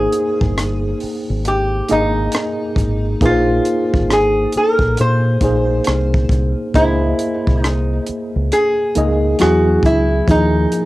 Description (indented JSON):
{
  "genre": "R&B, neo-soul",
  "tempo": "68 BPM",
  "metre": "4/4",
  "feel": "swing 62% on 16ths",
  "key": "Ab major",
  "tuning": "A4 = 440 Hz",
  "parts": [
    { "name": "metal-body resonator slide guitar", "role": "melody", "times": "0.0-10.9 s", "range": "Eb4 to C5", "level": "-18 LUFS", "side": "equal", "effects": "cassette tape, plate reverb" },
    { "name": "tine electric piano", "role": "accompaniment", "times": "0.0-10.9 s", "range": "F3 to Eb5", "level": "-19 LUFS", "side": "equal", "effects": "overdrive, fast stereo tremolo, cassette tape, plate reverb" },
    { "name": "deep dub fingered electric bass", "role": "bass", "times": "0.0-10.7 s", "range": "G1 to Bb2", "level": "-18 LUFS", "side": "equal", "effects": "none" },
    { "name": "compact cocktail drum kit", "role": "drums", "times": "0.1-10.9 s", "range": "hi-hat, kick drum, rim click", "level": "-20 LUFS", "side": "equal", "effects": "cassette tape" }
  ],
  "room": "moderate booth ambience, RT60 0.2 s",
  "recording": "home recording on cassette",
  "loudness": "-14 LUFS",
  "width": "side -18 dB against mid",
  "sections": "0.0-10.9 A section",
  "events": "none",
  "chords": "0.0 Abmaj7; 3.2 Bbsus2; 6.7 Dbm6; 9.4 Eadd9; 10.3 Ebsus4",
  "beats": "0.57 1.45 2.33 | 3.22 4.10 4.98 5.86 | 6.75 7.63 8.51 9.39 | 10.28"
}